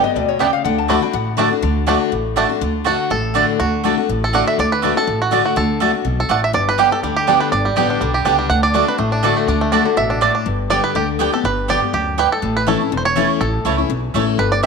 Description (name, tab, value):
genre	bluegrass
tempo	244 BPM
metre	4/4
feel	swing 54% on 8ths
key	D major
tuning	A4 = 441 Hz
part	lap resonator guitar	second line	0.0-1.5 s	C#5 to B5	-21 LUFS	left 9 dB	none
part	picked steel-string acoustic guitar	accompaniment	0.0-14.7 s	E2 to G4	-20 LUFS	left 12 dB	none
part	upright bass	bass	0.2-14.7 s	E1 to D2	-22 LUFS	right 1 dB	none
part	bluegrass banjo	melody	0.4-14.7 s	D3 to F#5	-20 LUFS	right 4 dB	none
part	mandolin	stabs	0.4-14.7 s	A3 to A5	-20 LUFS	right 11 dB	none
room	moderate echo chamber reverb, RT60 1.4 s, small room ambience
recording	1960s-style stereo with parts hard left and right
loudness	-15 LUFS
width	side -5 dB against mid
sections	0.0-2.6 A section; 2.6-10.5 A section; 10.5-14.7 A section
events	resonator guitar played with a steel bar solo 0.0-2.6; five-string banjo solo 2.6-14.7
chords	0.0 G; 0.6 D; 6.5 G; 8.5 D; 10.5 G; 12.4 A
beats	0.16 0.40 | 0.65 0.89 1.14 1.39 | 1.63 1.88 2.12 2.37 | 2.61 2.86 3.10 3.35 | 3.60 3.84 4.09 4.33 | 4.58 4.83 5.07 5.32 | 5.56 5.81 6.05 6.30 | 6.54 6.79 7.03 7.28 | 7.52 7.77 8.01 8.26 | 8.50 8.75 8.99 9.24 | 9.48 9.73 9.97 10.22 | 10.46 10.71 10.95 11.20 | 11.45 11.69 11.94 12.18 | 12.43 12.67 12.92 13.16 | 13.41 13.66 13.90 14.15 | 14.39 14.64